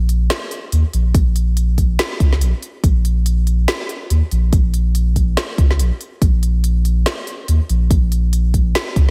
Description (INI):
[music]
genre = deep dubstep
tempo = 142 BPM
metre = 4/4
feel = swing 58% on 16ths, half-time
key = Bb minor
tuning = A4 = 440 Hz
[part]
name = soft dub sub bass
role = bass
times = 0.0-9.1 s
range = Bb1 to Eb2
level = -17 LUFS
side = equal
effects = none
[part]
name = deep house drum kit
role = drums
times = 0.1-9.1 s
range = hi-hat, snare drum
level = -25 LUFS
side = equal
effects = none
[part]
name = electronic kick drum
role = drums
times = 1.1-9.1 s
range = none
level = -17 LUFS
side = equal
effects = none
[sound]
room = little or no reverb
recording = none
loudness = -17 LUFS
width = mono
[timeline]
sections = 0.0-9.1 A section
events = none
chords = none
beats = 0.30 0.72 | 1.15 1.57 1.99 2.41 | 2.84 3.26 3.68 4.10 | 4.53 4.95 5.37 5.79 | 6.22 6.64 7.06 7.48 | 7.91 8.33 8.75